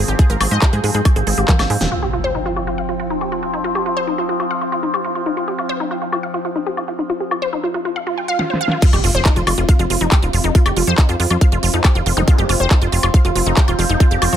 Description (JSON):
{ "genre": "psychedelic trance", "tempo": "139 BPM", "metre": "4/4", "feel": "straight", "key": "F minor", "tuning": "A4 = 442 Hz", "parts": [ { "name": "overtone-sweeping drone", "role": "sustained chords", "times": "0.0-14.4 s", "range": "F3 to C4", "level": "-24 LUFS", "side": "left 1 dB", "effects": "chorus, built-in reverb, sidechain pumping" }, { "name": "wide unison pluck", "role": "riff", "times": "0.0-14.4 s", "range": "Eb4 to Ab5", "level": "-21 LUFS", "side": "equal", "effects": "auto-pan, sidechain pumping, dub echo" }, { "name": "plucky analog bass", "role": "bass", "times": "0.0-1.9, 8.9-14.4 s", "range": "Eb1 to Ab2", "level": "-18 LUFS", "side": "equal", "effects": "none" }, { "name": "big-room dance drum kit", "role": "drums", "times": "0.1-14.4 s", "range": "crash cymbal, handclaps, hi-hat, snare drum, toms, woodblock", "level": "-21 LUFS", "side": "left 1 dB", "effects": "low-pass filter on hats, low-pass filter on snare, low-pass filter on perc, low-pass filter on toms, low-pass filter on cymbals" }, { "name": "electronic kick drum", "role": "drums", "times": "0.2-1.6, 8.8-14.1 s", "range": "none", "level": "-13 LUFS", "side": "equal", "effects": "none" }, { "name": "impact, swell and zap", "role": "sound effects", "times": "1.9-3.6, 8.1-12.3 s", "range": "none", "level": "-26 LUFS", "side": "right 1 dB", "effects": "none" } ], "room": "light reverb", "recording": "none", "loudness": "-14 LUFS", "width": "side -10 dB against mid", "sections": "0.0-1.9 A section; 1.9-8.8 B section; 8.8-14.4 C section", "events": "drum fill 1.5-1.9, 8.4-8.8; band accent 1.8; impact 1.9-3.6, 8.8-10.6; swell 8.1-8.8; drop 8.8-14.4", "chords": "0.0 Ab5; 1.9 F5" }